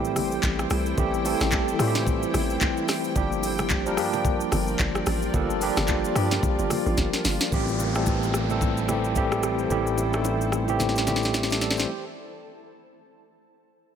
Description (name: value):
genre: amapiano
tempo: 110 BPM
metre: 4/4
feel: swing 58% on 16ths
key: A phrygian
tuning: A4 = 440 Hz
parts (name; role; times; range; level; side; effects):
- tine electric piano; accompaniment; 0.0-12.0 s; E3 to E5; -26 LUFS; equal; medium stereo tremolo
- granular cloud pad; sustained chords; 0.0-11.9 s; E4 to A5; -32 LUFS; equal; built-in reverb
- hollow log drum bass; bass; 0.0-7.4 s; G1 to A2; -28 LUFS; equal; none
- afro-pop drum kit; drums; 0.0-11.9 s; handclaps, hi-hat, kick drum, rim click, shaker, snare drum; -27 LUFS; equal; none
- bongos and congas; percussion; 0.2-11.5 s; none; -35 LUFS; right 6 dB; none
- sustaining fretless electric bass; bass; 7.5-11.8 s; A1; -28 LUFS; equal; none
- downlifter; sound effects; 7.5-11.9 s; none; -35 LUFS; equal; none
room: light reverb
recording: none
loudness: -22 LUFS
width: side -8 dB against mid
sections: 0.0-7.5 A section; 7.5-11.9 B section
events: drop 0.0-7.5; drum fill 7.0-7.5, 10.8-11.9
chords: 0.0 Am7; 3.2 Gm7; 7.5 Am7